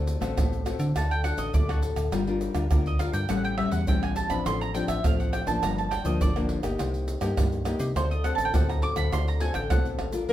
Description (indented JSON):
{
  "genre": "samba and choro",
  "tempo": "103 BPM",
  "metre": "4/4",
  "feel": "straight",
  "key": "unclear",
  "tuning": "A4 = 440 Hz",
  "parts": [
    { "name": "nylon-string guitar", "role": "accompaniment", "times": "0.0-10.3 s", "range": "G2 to Bb4", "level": "-30 LUFS", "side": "left 4 dB", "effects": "none" },
    { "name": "metallic FM bass", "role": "bass", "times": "0.0-10.3 s", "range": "G1 to D3", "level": "-29 LUFS", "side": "equal", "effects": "none" },
    { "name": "egg shaker, pandeiro, surdo and tamborim", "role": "percussion", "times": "0.1-10.3 s", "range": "none", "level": "-28 LUFS", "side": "right 1 dB", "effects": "none" },
    { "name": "mandolin", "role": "second line", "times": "1.0-9.9 s", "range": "F#4 to D6", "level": "-30 LUFS", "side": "right 4 dB", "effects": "none" },
    { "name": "breathy alto saxophone", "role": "melody", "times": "10.3 s", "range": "Bb4", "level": "-21 LUFS", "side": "left 2 dB", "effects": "none" }
  ],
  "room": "moderate studio reverb, RT60 0.8 s",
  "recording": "heard from further back in the room",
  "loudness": "-24 LUFS",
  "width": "side -13 dB against mid",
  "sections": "0.0-10.3 A section",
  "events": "mandolin solo 0.0-10.3",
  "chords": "0.0 D7; 1.0 D; 2.1 Gm7; 3.3 A7; 4.5 Dm7/A; 5.6 Gm7; 6.8 Cm7; 8.0 D7"
}